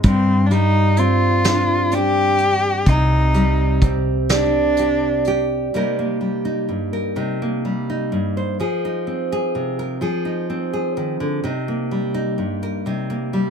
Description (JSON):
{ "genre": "folk", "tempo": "42 BPM (dotted quarters)", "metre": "6/8", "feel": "straight", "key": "C minor", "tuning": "A4 = 440 Hz", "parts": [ { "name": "nylon-string guitar", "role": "accompaniment", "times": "0.0-13.5 s", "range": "G2 to C5", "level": "-21 LUFS", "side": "right 1 dB", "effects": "none" }, { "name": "hollow-body short-scale fingered electric bass", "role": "bass", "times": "0.0-5.7 s", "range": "C2 to G2", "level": "-19 LUFS", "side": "equal", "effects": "none" }, { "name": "soft brush drum kit", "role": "drums", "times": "0.0-5.5 s", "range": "hi-hat, kick drum, snare drum", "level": "-20 LUFS", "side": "equal", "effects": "none" }, { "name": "warm cello", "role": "melody", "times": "0.1-5.3 s", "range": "C4 to G4", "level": "-20 LUFS", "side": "left 2 dB", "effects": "none" }, { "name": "vibraphone with medium hard mallets", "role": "arpeggios", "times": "4.3-6.0 s", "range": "D5", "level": "-21 LUFS", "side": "right 4 dB", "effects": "none" } ], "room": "light reverb", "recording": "none", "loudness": "-17 LUFS", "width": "side -7 dB against mid", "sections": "0.0-5.7 A section; 5.7-13.5 B section", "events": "none", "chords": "0.0 Gsus4; 2.9 Cmadd9; 5.7 Cm7; 8.6 Fm7; 11.4 Cm7" }